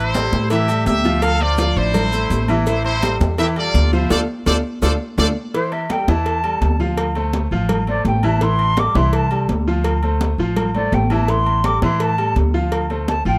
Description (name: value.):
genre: latin, salsa.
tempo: 167 BPM.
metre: 4/4.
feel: straight.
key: A minor.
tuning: A4 = 439 Hz.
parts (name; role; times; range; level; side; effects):
brilliant trumpet section; melody; 0.0-5.3 s; E4 to F5; -24 LUFS; equal; none.
clear concert grand piano; accompaniment; 0.0-13.4 s; E3 to F5; -25 LUFS; equal; none.
upright bass; bass; 0.0-13.4 s; A1 to A2; -22 LUFS; equal; none.
agogo bells and timbales; percussion; 0.1-13.1 s; none; -31 LUFS; equal; none.
congas; percussion; 0.1-13.4 s; none; -27 LUFS; equal; none.
cowbell; percussion; 0.1-13.3 s; none; -30 LUFS; equal; none.
maracas; percussion; 0.1-5.3 s; none; -39 LUFS; equal; none.
silver concert flute; melody; 5.5-13.4 s; C5 to D6; -24 LUFS; equal; none.
room: little or no reverb.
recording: close, detailed microphones.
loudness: -18 LUFS.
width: mono.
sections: 0.0-5.5 A section; 5.5-13.4 B section.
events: drum fill 4.1-5.5; band accent 4.1-5.5; flute solo 5.5-13.4.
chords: 0.0 Am7; 1.2 Dm7; 2.7 Am7; 4.1 Dm7; 5.5 A5; 7.0 Dm7; 8.4 Am7; 9.9 Dm7; 11.3 Am7; 12.7 Dm7.